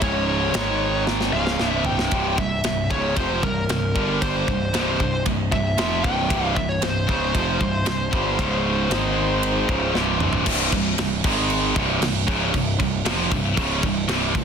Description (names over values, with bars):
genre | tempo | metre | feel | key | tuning
heavy metal | 115 BPM | 4/4 | straight | unclear | A4 = 438 Hz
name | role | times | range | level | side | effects
high-gain lead guitar | melody | 0.0-9.9 s | Bb4 to G5 | -26 LUFS | left 2 dB | distortion, tape echo
heavy high-gain guitar | riff | 0.0-14.4 s | C2 to Ab3 | -26 LUFS | left 13 dB | distortion
heavy high-gain guitar | riff | 0.0-14.4 s | C2 to Ab3 | -25 LUFS | right 9 dB | distortion
fuzz picked electric bass | bass | 0.0-14.4 s | C1 to Ab1 | -27 LUFS | left 1 dB | overdrive
tight metal drum kit | drums | 0.0-14.4 s | crash cymbal, kick drum, ride cymbal, snare drum, toms | -26 LUFS | equal | soft clipping on kick
room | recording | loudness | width
little or no reverb | dense, heavily limited modern master | -19 LUFS | side -7 dB against mid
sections
0.0-10.5 A section; 10.5-14.4 B section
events
drum fill 1.1-2.1, 9.9-10.5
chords
0.0 Db5; 0.5 Ab5; 1.3 C; 4.0 G5; 4.5 C5; 8.4 Db5; 8.9 Ab5; 9.7 C5; 11.2 Ab5; 11.8 C5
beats
| 0.01 0.54 1.07 1.59 | 2.12 2.64 3.17 3.69 | 4.22 4.74 5.26 5.79 | 6.31 6.83 7.35 7.87 | 8.39 8.91 9.43 9.95 | 10.47 10.99 11.51 12.02 | 12.54 13.06 13.57 14.09